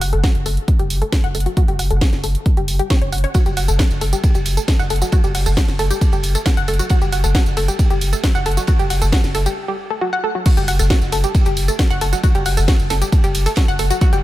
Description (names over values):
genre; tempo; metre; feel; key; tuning
driving peak-time techno; 135 BPM; 4/4; straight; F# phrygian; A4 = 440 Hz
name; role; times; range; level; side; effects
analog pluck; riff; 0.0-14.2 s; F#4 to F#5; -22 LUFS; equal; chorus, tube saturation, sidechain pumping, tape echo
saturated sub bass; bass; 0.0-14.2 s; F#1; -19 LUFS; equal; overdrive, sidechain pumping, low-pass filter
techno drum kit; drums; 0.0-14.2 s; crash cymbal, hi-hat, snare drum, tambourine; -24 LUFS; right 1 dB; sidechain pumping on hats, sidechain pumping on perc, sidechain pumping on cymbals
electronic kick drum; drums; 0.2-14.1 s; none; -16 LUFS; equal; none
vintage drum kit; drums; 3.3-14.1 s; hi-hat, ride cymbal, snare drum; -33 LUFS; right 2 dB; sidechain pumping on cymbals, high-pass filter on cymbals, sidechain pumping on hats, high-pass filter on hats, high-pass filter on snare, high-pass filter on room
room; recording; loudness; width
studio ambience; none; -14 LUFS; side -15 dB against mid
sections
0.0-10.5 A section; 10.5-14.2 B section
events
filter sweep on synth arpeggio sound 0.0-10.5; break 9.6-10.5; drop 10.5-14.2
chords
0.0 F#m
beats
0.24 0.68 1.12 | 1.57 2.01 2.46 2.90 | 3.35 3.79 4.24 4.68 | 5.12 5.57 6.01 6.46 | 6.90 7.35 7.79 8.24 | 8.68 9.12 9.57 10.01 | 10.46 10.90 11.35 11.79 | 12.24 12.68 13.12 13.57 | 14.01